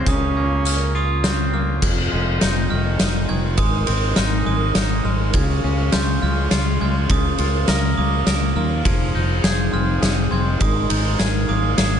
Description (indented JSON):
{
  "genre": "post-rock",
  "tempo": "102 BPM",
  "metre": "3/4",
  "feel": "straight",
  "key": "F minor",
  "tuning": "A4 = 440 Hz",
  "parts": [
    { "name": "dark cello", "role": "melody", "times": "0.0-1.2 s", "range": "Db4", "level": "-27 LUFS", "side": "right 1 dB", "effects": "slapback echo, tape echo" },
    { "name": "chorused pulse-width pad", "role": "sustained chords", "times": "0.0-12.0 s", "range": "Db4 to Db6", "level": "-30 LUFS", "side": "equal", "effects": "none" },
    { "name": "glockenspiel with hard plastic mallets", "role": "arpeggios", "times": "0.0-12.0 s", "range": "Eb6 to Ab6", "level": "-28 LUFS", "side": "right 7 dB", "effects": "slapback echo, tape echo" },
    { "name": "twangy electric guitar", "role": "arpeggios", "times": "0.0-12.0 s", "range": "F2 to Bb4", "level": "-26 LUFS", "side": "left 3 dB", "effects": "slapback echo, tape echo" },
    { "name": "modern bright fingered electric bass", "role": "bass", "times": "0.0-12.0 s", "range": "F1 to Eb2", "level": "-21 LUFS", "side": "equal", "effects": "none" },
    { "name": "oversized low-tuned drum kit", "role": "drums", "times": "0.1-11.9 s", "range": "crash cymbal, hi-hat, kick drum, ride cymbal, snare drum", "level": "-21 LUFS", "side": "equal", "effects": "none" }
  ],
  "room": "moderate recital hall reverb, RT60 1.3 s, small room ambience",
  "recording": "big arena sound, nothing above 10.7 kHz",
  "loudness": "-17 LUFS",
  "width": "side -8 dB against mid",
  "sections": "0.0-1.8 A section; 1.8-12.0 B section",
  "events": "none",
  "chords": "0.1 Bbmadd9/Db; 1.8 Fm7; 3.6 Abadd9; 5.3 Db; 7.1 Bbmadd9/Db; 8.9 Fm7; 10.6 Abadd9",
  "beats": "| 0.07 0.65 1.24 | 1.83 2.41 3.00 | 3.59 4.17 4.76 | 5.34 5.93 6.52 | 7.10 7.69 8.28 | 8.86 9.45 10.03 | 10.62 11.20 11.79"
}